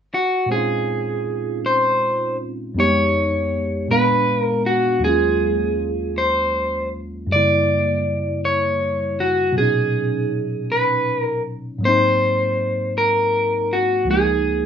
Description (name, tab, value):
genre	R&B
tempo	53 BPM (dotted quarters)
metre	6/8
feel	straight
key	Bb minor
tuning	A4 = 440 Hz
part	electric guitar at the edge of break-up	melody	0.1-14.7 s	Gb4 to D5	-18 LUFS	equal	slapback echo
part	tine electric piano	accompaniment	0.5-14.7 s	Db2 to F5	-22 LUFS	equal	phaser
room	moderate studio reverb, RT60 0.6 s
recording	rough home demo mix, faint mains hum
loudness	-17 LUFS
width	side -8 dB against mid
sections	0.5-14.7 A section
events	none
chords	0.0 N.C.; 0.5 Bbm11; 2.8 Fm7b5; 3.9 Bb7b9; 5.0 Ebm11; 7.3 Gb7b9; 9.6 Bmaj7; 11.8 Ab9; 14.1 Db6